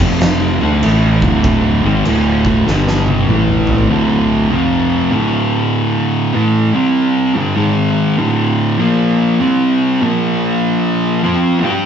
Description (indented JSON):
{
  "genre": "stoner and doom metal",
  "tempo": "98 BPM",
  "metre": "4/4",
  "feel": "swing 64% on 8ths",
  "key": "D minor, D phrygian from 3.9 s",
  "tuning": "A4 = 439 Hz",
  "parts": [
    { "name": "thick fuzz guitar", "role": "riff", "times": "0.0-11.9 s", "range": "D2 to G4", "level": "-15 LUFS", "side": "left 5 dB", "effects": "distortion" },
    { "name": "thick fuzz guitar", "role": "riff", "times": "0.0-11.9 s", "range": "D2 to G4", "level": "-16 LUFS", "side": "right 6 dB", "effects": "distortion" },
    { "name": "fingered electric bass", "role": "bass", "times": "0.0-3.9 s", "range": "D1 to D2", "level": "-19 LUFS", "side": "equal", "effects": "overdrive" },
    { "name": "oversized low-tuned drum kit", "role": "drums", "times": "0.0-3.9 s", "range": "crash cymbal, kick drum, snare drum, toms", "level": "-18 LUFS", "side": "equal", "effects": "none" }
  ],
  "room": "wet large studio reverb, RT60 1.0 s",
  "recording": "band playing live in one room, nothing above 7.6 kHz",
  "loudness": "-12 LUFS",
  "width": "side -8 dB against mid",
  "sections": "0.0-3.9 A section; 3.9-11.9 B section",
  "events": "drum fill 2.7-3.9",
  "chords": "0.0 F5; 0.5 D5; 2.7 G5; 3.3 A5; 3.9 D5; 4.5 F5; 5.1 D5; 6.6 C5; 7.3 G5; 7.6 G#5; 8.2 D5; 8.8 Bb5; 9.4 C5; 10.0 Bb5",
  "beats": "0.22 0.83 | 1.44 2.06 2.67 3.28 | 3.89 4.50 5.12 5.73 | 6.34 6.95 7.57 8.18 | 8.79 9.40 10.02 10.63 | 11.24 11.86"
}